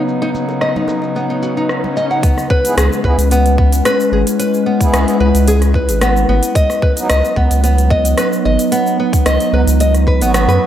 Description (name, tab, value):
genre	organic downtempo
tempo	111 BPM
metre	4/4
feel	swing 53% on 16ths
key	C# minor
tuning	A4 = 440 Hz
part	pedal harmonium	accompaniment	0.0-10.7 s	C#3 to G#4	-22 LUFS	right 2 dB	vintage 12-bit sampler grit, sidechain pumping, analog delay
part	warbly tape-like pad	sustained chords	0.0-10.7 s	C#3 to B4	-18 LUFS	left 1 dB	chorus, built-in reverb, sidechain pumping
part	organic electronic drum kit	drums	0.1-10.6 s	hi-hat, rim click, shaker	-21 LUFS	equal	low-pass filter on perc, low-pass filter on snare, low-pass filter on hats, low-pass filter on room
part	nylon-string guitar	arpeggios	0.2-10.6 s	B3 to F#5	-17 LUFS	equal	analog delay
part	bongos and congas	percussion	0.2-1.9 s	none	-30 LUFS	right 3 dB	none
part	swell	sound effects	1.5-2.2 s	none	-30 LUFS	left 3 dB	none
part	electronic kick drum	drums	2.2-10.2 s	none	-14 LUFS	equal	none
part	round analog bass	bass	2.8-10.6 s	G#1 to F#2	-14 LUFS	equal	sidechain pumping
room	moderate plate reverb, RT60 2.0 s, digital ambience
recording	dreamy mix soaked in reverb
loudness	-11 LUFS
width	side -11 dB against mid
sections	0.0-2.2 A section; 2.2-10.7 B section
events	swell 1.5-2.2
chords	0.0 B/C#; 2.2 C#m7; 6.6 B